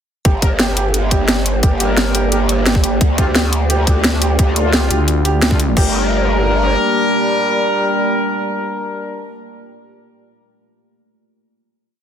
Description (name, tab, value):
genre	dark technical drum and bass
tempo	174 BPM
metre	4/4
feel	straight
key	G minor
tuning	A4 = 440 Hz
part	deep dark ambient pad	sustained chords	0.8-9.3 s	A3 to D5	-22 LUFS	right 1 dB	chorus, built-in reverb, sidechain pumping
part	felt-muted upright piano	arpeggios	0.2-5.9 s	G4	-24 LUFS	right 3 dB	sidechain pumping, ping-pong delay
part	growl bass	bass	0.2-6.8 s	G1 to D2	-17 LUFS	equal	chorus, overdrive
part	drum and bass drum kit	drums	0.2-5.8 s	crash cymbal, hi-hat, snare drum	-18 LUFS	equal	overdrive, small room ambience
part	electronic kick drum	drums	0.2-5.8 s	none	-14 LUFS	equal	overdrive, small room ambience
part	warm brass ensemble	stabs	0.4-9.3 s	D3 to Bb4	-20 LUFS	left 1 dB	ping-pong delay
part	growling FM bass	bass	4.9-5.8 s	D2	-16 LUFS	equal	none
room	light reverb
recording	dense, heavily limited modern master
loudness	-13 LUFS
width	side -8 dB against mid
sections	0.2-5.8 drop; 5.8-8.5 final chord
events	drop 0.2-5.8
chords	0.2 Gm; 3.0 Dm; 5.8 Gm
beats	| 0.25 0.59 0.94 1.28 | 1.63 1.97 2.32 2.66 | 3.01 3.35 3.70 4.04 | 4.39 4.73 5.08 5.42 | 5.77 6.11 6.46 6.80 | 7.15 7.49 7.84 8.18